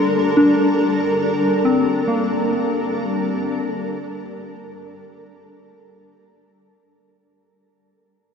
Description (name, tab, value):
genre	ambient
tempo	70 BPM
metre	4/4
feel	straight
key	G minor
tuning	A4 = 436 Hz
part	granular cloud pad	sustained chords	0.0-7.3 s	G3 to Bb4	-20 LUFS	equal	built-in reverb, shimmer reverb
part	soft synth bell	arpeggios	0.0-7.3 s	Bb3 to C6	-20 LUFS	left 2 dB	chorus, phaser, diffuse ambient delay, shimmer reverb
room	wet huge ambient reverb, RT60 7.8 s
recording	in a vast, echoing space, nothing above 7.8 kHz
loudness	-16 LUFS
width	side -6 dB against mid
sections	0.0-7.3 A section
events	fade-out 0.0-7.3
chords	0.0 Gm